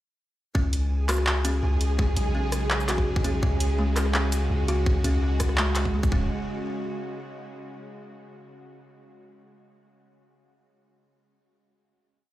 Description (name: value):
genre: half-time drum and bass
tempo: 167 BPM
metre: 4/4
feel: half-time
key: unclear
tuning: A4 = 437 Hz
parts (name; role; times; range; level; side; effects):
- bowed-like drone; sustained chords; 1.4-6.3 s; C#3 to G#4; -34 LUFS; equal; built-in reverb, vintage 12-bit sampler grit, sidechain pumping
- buzzing kalimba; arpeggios; 0.5-6.3 s; G#3 to F#4; -32 LUFS; equal; digital delay
- long sustained 808-style bass; bass; 0.6-6.3 s; C#1 to C#2; -25 LUFS; equal; none
- electronic kick drum; drums; 0.6-6.2 s; none; -24 LUFS; equal; overdrive
- flickering grainy texture; texture; 0.8-6.3 s; G#4; -37 LUFS; right 2 dB; built-in reverb
- drum and bass drum kit; drums; 0.7-6.1 s; handclaps, hi-hat, rim click, shaker; -29 LUFS; equal; overdrive
room: little or no reverb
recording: played on a big sound system in a bare room, large studio reverb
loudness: -22 LUFS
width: side -15 dB against mid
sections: 0.6-6.3 drop; 6.3-7.7 final hit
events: drop 0.6-6.3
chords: 0.6 C#5; 6.3 N.C.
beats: | 0.55 0.91 1.27 1.63 | 1.99 2.35 2.71 3.06 | 3.42 3.78 4.14 4.50 | 4.86 5.22 5.58 5.94 | 6.30